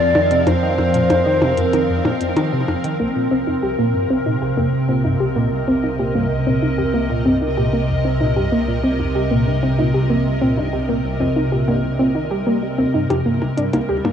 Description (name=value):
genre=ambient, sequencer-driven space music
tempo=95 BPM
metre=4/4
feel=straight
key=C minor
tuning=A4 = 441 Hz
part: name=mellow hollow silver concert flute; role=melody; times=0.0-2.4 s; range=C5 to D5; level=-20 LUFS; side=equal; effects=cassette tape, tape echo
part: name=evolving wavetable pad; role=sustained chords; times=0.0-14.1 s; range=C3 to F5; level=-20 LUFS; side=equal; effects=ensemble chorus, built-in reverb, cassette tape
part: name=tight sequenced synth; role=riff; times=0.0-14.1 s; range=C2 to G3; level=-23 LUFS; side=equal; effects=chorus, cassette tape, tape echo
part: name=round analog bass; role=bass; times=0.0-14.1 s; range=G1 to F2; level=-27 LUFS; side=equal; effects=none
part: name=wind-like tuned noise texture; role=texture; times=0.1-3.0 s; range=none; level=barely audible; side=none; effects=none
part: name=electronic percussion blips and hi-hat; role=percussion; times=0.1-3.0, 13.1-14.1 s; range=none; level=-23 LUFS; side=left 1 dB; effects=tape echo
part: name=soft round pluck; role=arpeggios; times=3.0-14.1 s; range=Bb3 to G4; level=-20 LUFS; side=equal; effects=chorus, auto-pan, cassette tape, tape echo
room=wet small room reverb, RT60 0.5 s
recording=home recording on cassette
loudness=-16 LUFS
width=side -8 dB against mid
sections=0.0-3.0 A section; 3.0-14.1 B section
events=none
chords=0.0 Fsus4; 3.0 Cm7; 13.1 Gm